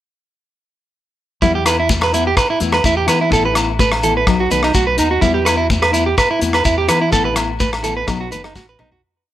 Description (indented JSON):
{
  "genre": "highlife guitar band",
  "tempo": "126 BPM",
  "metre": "4/4",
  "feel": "straight",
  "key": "E harmonic minor",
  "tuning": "A4 = 441 Hz",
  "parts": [
    { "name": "nylon-string guitar", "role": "accompaniment", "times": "1.4-9.0 s", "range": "E3 to E4", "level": "-22 LUFS", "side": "left 6 dB", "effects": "none" },
    { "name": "electric guitar at the edge of break-up", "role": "arpeggios", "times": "1.4-9.0 s", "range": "D#4 to B4", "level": "-17 LUFS", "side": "right 4 dB", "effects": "analog delay" },
    { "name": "fingered electric bass", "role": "bass", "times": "1.4-9.0 s", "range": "F#1 to E3", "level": "-22 LUFS", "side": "left 1 dB", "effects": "none" },
    { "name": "warm soul drum kit", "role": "drums", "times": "1.4-9.0 s", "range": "hi-hat, kick drum, rim click, snare drum, toms", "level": "-20 LUFS", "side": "left 1 dB", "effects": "none" },
    { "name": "congas", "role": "percussion", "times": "1.4-8.9 s", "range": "none", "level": "-27 LUFS", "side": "left 5 dB", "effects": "none" },
    { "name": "shekere", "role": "percussion", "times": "1.4-8.7 s", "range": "none", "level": "-25 LUFS", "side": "left 2 dB", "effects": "none" },
    { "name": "agogo bells", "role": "percussion", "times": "1.7-8.9 s", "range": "none", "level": "-24 LUFS", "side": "left 2 dB", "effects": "none" }
  ],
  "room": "light reverb, studio reverb",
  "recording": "none",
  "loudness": "-13 LUFS",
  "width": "side -12 dB against mid",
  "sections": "1.4-9.0 groove",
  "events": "fade-out 7.1-9.0; drum fill 8.6-9.0",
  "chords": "1.4 Em; 3.3 Asus2; 4.3 B; 5.2 Em; 7.1 Asus2; 8.1 B",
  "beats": "| 1.42 1.90 2.37 2.85 | 3.32 3.80 4.28 4.75 | 5.23 5.70 6.18 6.66 | 7.13 7.61 8.08 8.56"
}